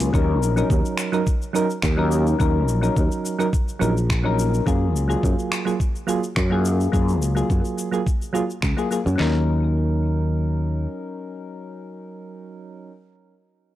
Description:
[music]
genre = sunset chillout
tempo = 106 BPM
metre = 4/4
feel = straight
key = Eb minor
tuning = A4 = 440 Hz
[part]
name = soft electric-piano-like synth keys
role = accompaniment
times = 0.0-12.9 s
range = Gb3 to Bb4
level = -24 LUFS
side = moving between left 5 dB and right 5 dB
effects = chorus, auto-pan, low-pass filter, analog delay
[part]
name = sustaining fretless electric bass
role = bass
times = 0.0-10.9 s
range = Bb1 to Gb2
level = -20 LUFS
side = equal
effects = lush chorus
[part]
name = smooth R&B drum kit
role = drums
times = 0.0-9.2 s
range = cabasa, finger snaps, hi-hat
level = -30 LUFS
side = left 1 dB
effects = studio reverb
[part]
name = smooth R&B drum kit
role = drums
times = 0.1-9.3 s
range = handclaps, kick drum, snare drum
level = -22 LUFS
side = equal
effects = studio reverb
[sound]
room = digital ambience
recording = dry, gritty hardware recording, transformer saturation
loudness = -19 LUFS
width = side -14 dB against mid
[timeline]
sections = 0.1-9.2 A section; 9.2-11.5 B section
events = none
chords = 0.1 Ebm7; 4.7 Gbmaj9; 9.2 Ebm7

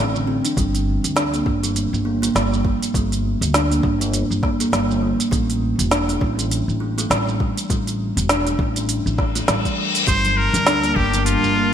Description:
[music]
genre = organic downtempo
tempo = 101 BPM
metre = 4/4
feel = swing 58% on 16ths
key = G dorian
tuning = A4 = 441 Hz
[part]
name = kalimba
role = arpeggios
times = 0.0-11.7 s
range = D3 to D4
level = -22 LUFS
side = right 1 dB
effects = digital delay
[part]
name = upright bass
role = bass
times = 0.0-11.7 s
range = E1 to D2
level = -23 LUFS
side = equal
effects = sidechain pumping
[part]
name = organic electronic drum kit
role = drums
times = 0.2-11.5 s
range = hi-hat, shaker, snare drum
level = -23 LUFS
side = right 1 dB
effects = none
[part]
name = electronic kick drum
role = drums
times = 0.6-11.1 s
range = none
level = -22 LUFS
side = equal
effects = none
[part]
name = reverse cymbal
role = sound effects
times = 9.3-10.1 s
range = none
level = -24 LUFS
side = left 5 dB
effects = none
[part]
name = trumpet with straight mute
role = melody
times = 10.1-11.7 s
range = F4 to C5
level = -19 LUFS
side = left 1 dB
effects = ping-pong delay
[part]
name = airy breathy pad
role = sustained chords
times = 10.1-11.7 s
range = G3 to A5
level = -25 LUFS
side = right 1 dB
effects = chorus, sidechain pumping
[part]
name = congas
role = percussion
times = 10.2-11.2 s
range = none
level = -32 LUFS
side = equal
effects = none
[sound]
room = moderate lush hall reverb, RT60 1.8 s, studio ambience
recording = bright 1980s-style digital production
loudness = -17 LUFS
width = side -9 dB against mid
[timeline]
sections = 0.0-11.7 A section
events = reverse cymbal 9.3-10.1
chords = 0.0 Am; 0.6 Gm; 5.3 A5; 10.1 Gm7

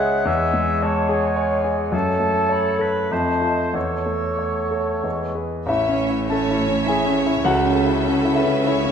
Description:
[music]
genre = classical, romantic movement for piano and orchestra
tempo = 91-112 BPM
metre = 3/4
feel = rubato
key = A major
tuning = A4 = 440 Hz
[part]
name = clear concert grand piano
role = melody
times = 0.0-8.9 s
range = A1 to A5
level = -21 LUFS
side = left 1 dB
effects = none
[part]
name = clear oboe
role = second line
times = 0.0-5.3 s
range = A4 to F#5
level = -26 LUFS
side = equal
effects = none
[part]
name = silver concert flute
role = second line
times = 0.0-5.3 s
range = E5 to E6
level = -27 LUFS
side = left 1 dB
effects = none
[part]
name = warm clarinet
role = second line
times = 0.0-5.4 s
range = B4 to Eb5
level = -30 LUFS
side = left 4 dB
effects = none
[part]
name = mellow bassoon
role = accompaniment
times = 0.0-5.4 s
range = G#3 to A3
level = -26 LUFS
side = right 3 dB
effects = none
[part]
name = bright symphonic violin section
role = melody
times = 5.7-8.9 s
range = E5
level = -32 LUFS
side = left 3 dB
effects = none
[part]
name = clear symphonic viola section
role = accompaniment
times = 5.7-8.9 s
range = C#4 to C#5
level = -26 LUFS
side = right 1 dB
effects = none
[part]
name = rich symphonic cello section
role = bass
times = 5.7-8.9 s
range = A2 to C#3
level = -28 LUFS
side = right 3 dB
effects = none
[part]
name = rich symphonic double bass section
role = bass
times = 5.7-8.9 s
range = A1 to C#2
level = -28 LUFS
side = right 5 dB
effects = none
[part]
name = rich symphonic violin section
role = second line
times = 6.3-8.9 s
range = A4 to E5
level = -28 LUFS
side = left 2 dB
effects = none
[sound]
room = wet scoring stage reverb, RT60 1.6 s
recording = none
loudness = -18 LUFS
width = side -7 dB against mid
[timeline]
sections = 0.0-5.7 A section; 5.7-8.9 B section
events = none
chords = 0.3 C#m/E; 1.9 F#m; 5.0 E; 5.7 A; 7.5 A/C#

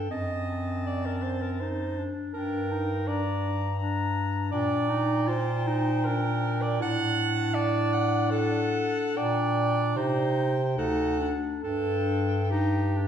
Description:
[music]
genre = classical, lyrical piece for single-reed quartet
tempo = 66-84 BPM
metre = 3/4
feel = rubato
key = G minor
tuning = A4 = 439 Hz
[part]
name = warm soprano saxophone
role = melody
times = 0.0-13.1 s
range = F#5 to Bb5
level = -36 LUFS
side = left 5 dB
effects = none
[part]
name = warm alto saxophone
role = second line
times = 0.0-13.1 s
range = G4 to F#5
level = -30 LUFS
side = right 5 dB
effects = none
[part]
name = warm clarinet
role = accompaniment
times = 0.0-13.1 s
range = C4 to F4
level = -31 LUFS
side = left 3 dB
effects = none
[part]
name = clear bass clarinet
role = bass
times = 0.0-13.1 s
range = D2 to C3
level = -29 LUFS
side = equal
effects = none
[sound]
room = wet recital hall reverb, RT60 1.4 s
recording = heard from further back in the room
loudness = -25 LUFS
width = side -8 dB against mid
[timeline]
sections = 0.0-13.1 A section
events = none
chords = 0.1 D7/F#; 2.4 Gm; 4.5 Gm/Bb; 6.8 D/A; 9.2 Gm/Bb; 10.0 Cm; 10.8 D; 11.6 G5

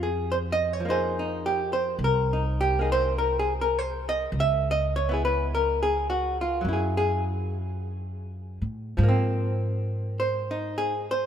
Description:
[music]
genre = jazz ballad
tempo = 51 BPM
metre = 4/4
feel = swing 68% on 8ths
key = unclear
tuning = A4 = 440 Hz
[part]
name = archtop guitar, miked and amplified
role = accompaniment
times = 0.0-11.3 s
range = F3 to Fb5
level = -25 LUFS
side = equal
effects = none
[part]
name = upright bass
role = bass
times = 0.0-11.3 s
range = C2 to A2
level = -28 LUFS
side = equal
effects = none
[sound]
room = moderate plate reverb, RT60 3.9 s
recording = minimal, uncompressed stereo recording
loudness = -24 LUFS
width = side -9 dB against mid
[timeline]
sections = 0.0-11.3 A section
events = none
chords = 0.0 Fm7; 4.3 Dbm7; 6.7 Gbsus2; 9.0 Ab69

